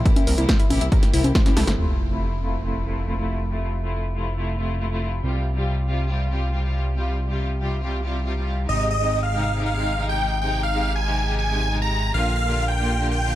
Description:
uplifting trance; 139 BPM; 4/4; straight; A4 = 440 Hz
fat analog bass; bass; 0.0-13.4 s; F1 to C2; -24 LUFS; equal; sidechain pumping
clear studio string section; sustained chords; 0.1-13.4 s; C3 to G4; -28 LUFS; equal; sidechain pumping, low-pass filter
analog pluck; arpeggios; 0.1-1.7 s; C4 to E5; -31 LUFS; left 3 dB; chorus, sidechain pumping, tape echo
electronic kick drum; drums; 0.1-1.4 s; -19 LUFS; equal
punchy analog drum machine; drums; 0.1-1.8 s; congas, hi-hat, snare drum; -25 LUFS; equal; low-pass filter on hats, low-pass filter on snare, low-pass filter on perc
sub drop; sound effects; 1.8-3.5 s; -28 LUFS; equal
big supersaw lead; melody; 8.7-13.4 s; Eb5 to Bb5; -24 LUFS; equal; phaser, sidechain pumping, tape echo
digital ambience; -20 LUFS; side -14 dB against mid
0.0-1.8 A section; 1.8-13.4 B section
filter sweep on string section 0.0-1.8, 1.8-13.4; drum fill 1.5-1.8; impact 1.8-3.5
0.1 C7; 1.8 Fmaj7; 5.2 Csus4; 8.7 Abmaj7; 12.1 Bb6

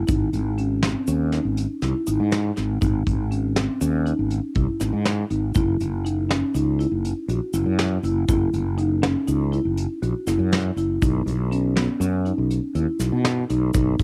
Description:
progressive instrumental, band music in an uneven meter; 242 BPM (eighths); 11/8; straight; A4 = 440 Hz
fretless electric bass; bass; 0.0-14.0 s; F#1 to B2; -25 LUFS; equal
marimba with soft mallets; arpeggios; 0.1-14.0 s; B3 to F#4; -27 LUFS; equal; cassette tape, plate reverb
soft brush drum kit; drums; 0.1-14.0 s; hi-hat, kick drum, snare drum; -28 LUFS; equal; cassette tape
tube shaker; percussion; 0.1-14.0 s; -42 LUFS; equal
moderate booth ambience, RT60 0.2 s; home recording on cassette; -23 LUFS; mono
0.0-14.0 A section
0.1 G#5; 5.6 F#7(no3); 11.0 B

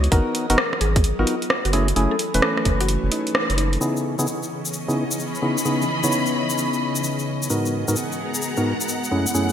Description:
UK garage, two-step garage; 130 BPM; 4/4; swing 65% on 16ths; C# minor; A4 = 443 Hz
mallet-like synth pluck; melody; 0.0-3.8 s; D#4 to A#4; -29 LUFS; left 2 dB; chorus, digital delay
ethereal airy pad; sustained chords; 0.0-9.5 s; C#3 to D#5; -31 LUFS; left 1 dB; ensemble chorus, built-in reverb, sidechain pumping
percussive organ stab; stabs; 0.0-9.5 s; F#2 to C#5; -23 LUFS; equal; chorus, cassette tape, digital delay
saturated sub bass; bass; 0.0-3.8 s; E1 to G#1; -21 LUFS; equal
punchy analog drum machine; drums; 0.0-3.8 s; hi-hat, rim click; -23 LUFS; right 1 dB; low-pass filter on hats, low-pass filter on snare, gated reverb
electronic kick drum; drums; 0.1-2.8 s; -19 LUFS; equal; overdrive
tube shaker; percussion; 3.8-9.5 s; -29 LUFS; left 3 dB
warm studio string section; texture; 3.8-9.5 s; E3 to B5; -27 LUFS; equal; sidechain pumping
moderate lush hall reverb, RT60 1.7 s; bright 1980s-style digital production; -19 LUFS; side -9 dB against mid
0.0-3.8 A section; 3.8-9.5 B section
kick drops out 2.9-3.8; band accent 3.3; filter sweep on ambient pad 3.8-9.5
0.1 G#m9; 1.7 F#m9; 3.8 C#m9; 7.5 G#m9

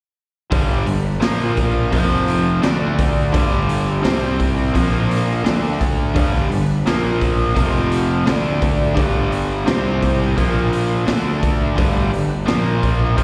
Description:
blues rock power trio and southern rock; 85 BPM; 4/4; straight; A4 = 440 Hz
overdriven tonewheel organ; sustained chords; 0.5-13.2 s; G3 to D5; -34 LUFS; equal
biting overdriven guitar; riff; 0.5-13.2 s; F2 to D4; -21 LUFS; equal
fuzz fingered electric bass; bass; 0.5-13.2 s; F1 to D2; -24 LUFS; equal; overdrive
raw garage drum kit; drums; 0.5-13.2 s; hi-hat, kick drum, snare drum; -23 LUFS; equal
light reverb; live gig heard through the venue's PA, recital hall reverb; -18 LUFS; mono
0.5-13.2 A section
0.5 G; 1.2 Bb5; 1.9 F5; 2.6 D5; 3.3 G; 4.0 C5; 4.7 Bb5; 5.5 D5; 6.2 G; 6.9 Bb5; 7.6 F5; 8.3 D5; 9.0 G; 9.7 C5; 10.4 Bb5; 11.1 D5; 11.8 G; 12.5 Bb5

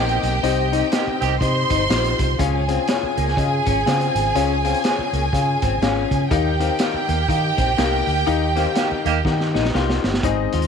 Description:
uptempo 1960s-style soul; 122 BPM; 4/4; swing 60% on 8ths; A4 = 440 Hz
warm studio violin section; second line; 0.0-10.2 s; G4 to C6; -23 LUFS; right 3 dB
warm concert grand piano; accompaniment; 0.0-10.7 s; Ab2 to G5; -24 LUFS; left 11 dB
electric guitar through a small old amp; riff; 0.0-10.7 s; Bb3 to Ab4; -27 LUFS; left 12 dB
vintage muted fingered electric bass; bass; 0.0-10.7 s; G1 to Eb3; -23 LUFS; right 2 dB
crunchy breakbeat drum kit; drums; 0.1-10.7 s; hi-hat, kick drum, snare drum; -25 LUFS; right 2 dB
clear horn section; second line; 0.7-1.3, 8.6-9.2 s; Eb3 to G4; -26 LUFS; right 13 dB
light reverb; 1960s-style stereo with parts hard left and right; -17 LUFS; side -6 dB against mid
0.0-10.2 A section
band accent 0.4-2.4, 8.3-10.2; drum fill 9.3-10.2
0.0 Cm; 2.4 Db; 6.3 Ebadd9

